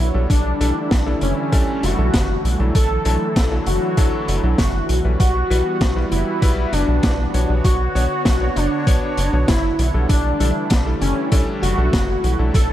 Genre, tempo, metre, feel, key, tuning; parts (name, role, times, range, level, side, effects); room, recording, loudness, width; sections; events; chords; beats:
synthwave; 98 BPM; 4/4; straight; A4 = 439 Hz
wide unison lead; melody; 0.0-12.7 s; C#4 to A4; -24 LUFS; equal; wide subtle chorus, tape echo
FM electric piano with soft pad layer; second line; 0.0-12.7 s; C#4 to A4; -30 LUFS; equal
warm analog pad; sustained chords; 0.0-12.7 s; D3 to C#5; -26 LUFS; equal; chorus, phaser, sidechain pumping
tight sequencer bass; bass; 0.0-12.7 s; F#1 to B1; -20 LUFS; equal
clear electric grand piano; stabs; 0.1-12.7 s; D3 to C#5; -28 LUFS; left 2 dB; tape echo
electronic kick drum; drums; 0.3-12.7 s; -19 LUFS; equal
raw garage drum kit; drums; 0.3-12.7 s; hi-hat, snare drum; -24 LUFS; equal
little or no reverb; dark, warm production; -16 LUFS; side -12 dB against mid
0.0-12.7 A section
0.3 A7sus4; 5.2 Emadd9; 7.6 Bmadd9; 10.1 A7sus4
| 0.30 0.91 1.52 2.14 | 2.75 3.36 3.97 4.59 | 5.20 5.81 6.42 7.04 | 7.65 8.26 8.87 9.48 | 10.10 10.71 11.32 11.93 | 12.54